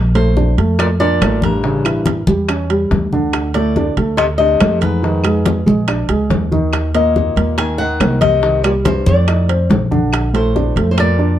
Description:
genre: Afro-Cuban jazz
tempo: 141 BPM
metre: 4/4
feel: straight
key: Bb major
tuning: A4 = 444 Hz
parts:
  - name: upright bass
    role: bass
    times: 0.0-11.4 s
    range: A1 to F2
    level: -16 LUFS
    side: equal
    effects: none
  - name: flamenco guitar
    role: melody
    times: 0.2-11.4 s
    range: Bb4 to Ab5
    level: -18 LUFS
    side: left 4 dB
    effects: none
  - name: mellow baritone saxophone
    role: second line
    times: 0.2-11.4 s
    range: G2 to Eb3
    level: -23 LUFS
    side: left 2 dB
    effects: none
  - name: dark baby grand piano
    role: accompaniment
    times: 0.2-11.4 s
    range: C#3 to Eb5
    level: -18 LUFS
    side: right 2 dB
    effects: none
  - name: bongos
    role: percussion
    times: 0.2-11.4 s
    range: none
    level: -25 LUFS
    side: left 4 dB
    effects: none
  - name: congas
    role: percussion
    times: 0.2-11.4 s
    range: none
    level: -21 LUFS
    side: left 3 dB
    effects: none
  - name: timbales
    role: percussion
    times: 0.2-11.2 s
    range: none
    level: -24 LUFS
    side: right 8 dB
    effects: none
  - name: claves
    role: percussion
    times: 0.8-11.2 s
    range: none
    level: -29 LUFS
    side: left 2 dB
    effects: none
room: light reverb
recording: dark, warm production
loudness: -12 LUFS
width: side -11 dB against mid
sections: 0.0-11.4 A section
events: none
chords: 0.0 Bbmaj9; 1.6 A7b9; 3.3 Dm7; 5.0 Fm7b5; 5.9 Bb7#9; 6.7 Ebm; 8.4 Cm; 9.3 F6; 10.1 Bbmaj9

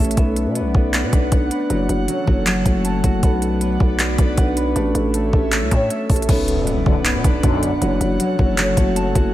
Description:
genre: hip hop, trap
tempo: 157 BPM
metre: 4/4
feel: half-time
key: B minor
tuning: A4 = 440 Hz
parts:
  - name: airy breathy pad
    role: sustained chords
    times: 0.0-9.3 s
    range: F#3 to F#5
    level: -26 LUFS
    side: right 2 dB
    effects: chorus
  - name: concert harp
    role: arpeggios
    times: 0.0-9.3 s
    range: F#3 to A5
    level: -21 LUFS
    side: left 1 dB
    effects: digital delay
  - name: growling 808-style bass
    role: bass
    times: 0.0-9.3 s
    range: F#1 to B2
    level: -22 LUFS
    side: equal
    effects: none
  - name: trap drum kit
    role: drums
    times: 0.0-9.2 s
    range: crash cymbal, handclaps, hi-hat, kick drum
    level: -18 LUFS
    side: equal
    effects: none
  - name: impact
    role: sound effects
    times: 6.3-7.8 s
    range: none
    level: -28 LUFS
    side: equal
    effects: none
  - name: resonant sweep polysynth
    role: stabs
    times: 6.9-7.7 s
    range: B1 to D3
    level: -25 LUFS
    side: left 1 dB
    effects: chorus, digital delay
room: digital ambience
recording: none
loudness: -16 LUFS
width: side -14 dB against mid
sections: 0.0-6.3 A section; 6.3-9.3 B section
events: impact 6.3-7.8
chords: 0.2 Bm; 1.7 F#m; 3.2 Bm; 4.8 A; 6.3 Bm; 7.8 F#m

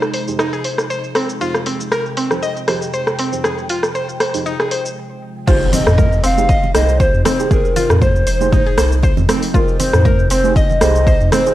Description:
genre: afro house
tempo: 118 BPM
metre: 4/4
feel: swing 55% on 16ths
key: F minor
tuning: A4 = 440 Hz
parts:
  - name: ethereal airy pad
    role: sustained chords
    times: 0.0-11.5 s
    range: C3 to G5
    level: -28 LUFS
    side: equal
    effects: ensemble chorus, built-in reverb, sidechain pumping, cassette tape
  - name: deep mellow chord stab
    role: stabs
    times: 0.0-11.5 s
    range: F3 to C5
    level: -26 LUFS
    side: right 6 dB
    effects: chorus, phaser, cassette tape, sidechain pumping, analog delay
  - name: afro-pop drum kit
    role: drums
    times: 0.0-11.5 s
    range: crash cymbal, hi-hat, rim click, shaker, toms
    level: -20 LUFS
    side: equal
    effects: low-pass filter on perc, cassette tape, low-pass filter on snare, low-pass filter on hats, low-pass filter on cymbals, low-pass filter on toms
  - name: mallet-like synth pluck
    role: arpeggios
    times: 0.1-11.5 s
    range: C4 to Eb5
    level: -22 LUFS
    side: equal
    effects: chorus, sidechain pumping, cassette tape, analog delay
  - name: breathy reedy large pan pipes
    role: melody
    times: 5.5-11.5 s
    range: Bb4 to F5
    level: -18 LUFS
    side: left 1 dB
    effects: cassette tape, analog delay
  - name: round analog bass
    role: bass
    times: 5.5-11.3 s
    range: F1 to F2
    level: -17 LUFS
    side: equal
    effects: sidechain pumping
  - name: electronic kick drum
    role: drums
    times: 5.5-11.2 s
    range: none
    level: -16 LUFS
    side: equal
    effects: overdrive, cassette tape
  - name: congas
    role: percussion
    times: 5.5-11.4 s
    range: none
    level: -24 LUFS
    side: right 11 dB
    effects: none
  - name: impact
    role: sound effects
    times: 5.5-7.5 s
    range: none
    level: -22 LUFS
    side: equal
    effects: none
room: light reverb, digital ambience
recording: home recording on cassette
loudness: -13 LUFS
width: side -14 dB against mid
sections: 0.0-5.5 A section; 5.5-11.5 B section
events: stop 5.0-5.5; drop 5.5-11.5; impact 5.5-7.5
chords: 0.0 Fm7

